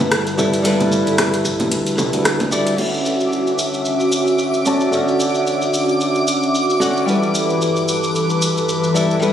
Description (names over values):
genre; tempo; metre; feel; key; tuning
sunset chillout; 112 BPM; 4/4; swing 56% on 16ths; D major; A4 = 440 Hz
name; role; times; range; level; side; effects
flamenco guitar; accompaniment; 0.0-9.3 s; D3 to A5; -20 LUFS; equal; auto-pan, low-pass filter, tape echo
airy breathy pad; sustained chords; 0.0-9.3 s; D2 to E5; -19 LUFS; equal; chorus
modern bright fingered electric bass; bass; 0.0-2.7 s; G1 to D2; -24 LUFS; equal; none
smooth R&B drum kit; drums; 0.0-9.3 s; congas, crash cymbal, hi-hat, rim click, shaker; -22 LUFS; equal; small room ambience
electronic kick drum; drums; 1.4-2.5 s; none; -31 LUFS; equal; small room ambience
twinkling granular texture; texture; 3.1-9.3 s; D6; -26 LUFS; equal; built-in reverb
room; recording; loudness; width
moderate lush hall reverb, RT60 2.2 s; recorded on a phone in the room, studio reverb, compression; -15 LUFS; side -9 dB against mid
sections
0.0-2.8 A section; 2.8-9.3 B section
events
filter sweep on nylon-string guitar 2.8-9.3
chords
0.0 G69; 2.8 Dmaj9; 7.1 G69